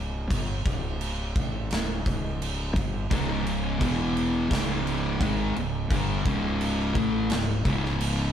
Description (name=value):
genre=stoner and doom metal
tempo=86 BPM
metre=4/4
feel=straight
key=unclear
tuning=A4 = 439 Hz
part: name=fuzz fingered electric bass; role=bass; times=0.0-8.3 s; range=C#1 to A1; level=-31 LUFS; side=equal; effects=overdrive
part: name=big rock drum kit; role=drums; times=0.3-8.2 s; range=crash cymbal, kick drum, snare drum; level=-29 LUFS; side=equal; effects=none
part: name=fuzz guitar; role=riff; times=3.1-8.3 s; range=C#2 to A3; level=-26 LUFS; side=equal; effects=distortion
room=moderate studio reverb, RT60 0.5 s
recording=band playing live in one room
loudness=-24 LUFS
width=side -9 dB against mid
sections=0.0-8.3 A section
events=none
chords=0.0 C#5; 3.8 E5; 4.5 C#5